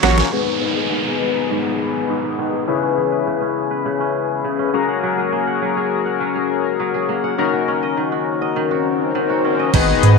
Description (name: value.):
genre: dance-pop.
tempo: 102 BPM.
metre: 4/4.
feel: straight.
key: G# minor.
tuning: A4 = 440 Hz.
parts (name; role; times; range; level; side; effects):
chorused polysynth; accompaniment; 0.0-10.2 s; A#3 to D#5; -19 LUFS; left 11 dB; sidechain pumping, low-pass filter.
kora; arpeggios; 0.0-10.2 s; G#2 to F#5; -24 LUFS; right 12 dB; sidechain pumping, low-pass filter, slapback echo.
saturated sub bass; bass; 0.0-0.2, 9.7-10.2 s; G#1 to G#2; -13 LUFS; right 2 dB; sidechain pumping.
smooth R&B drum kit; drums; 0.0-0.3, 9.7-10.2 s; crash cymbal, hi-hat, kick drum, snare drum; -20 LUFS; right 7 dB; none.
downlifter, swell and impact; sound effects; 0.3-10.2 s; none; -26 LUFS; right 2 dB; none.
room: moderate plate reverb, RT60 2.1 s.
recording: 1960s-style stereo with parts hard left and right.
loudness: -17 LUFS.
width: side -4 dB against mid.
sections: 0.3-9.7 A section.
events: drum fill 0.0-0.3; filter sweep 0.3-9.7; swell 8.3-9.7; impact 9.7-10.2.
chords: 0.3 G#m; 2.7 C#m7; 4.7 F#add9; 7.4 D#m7.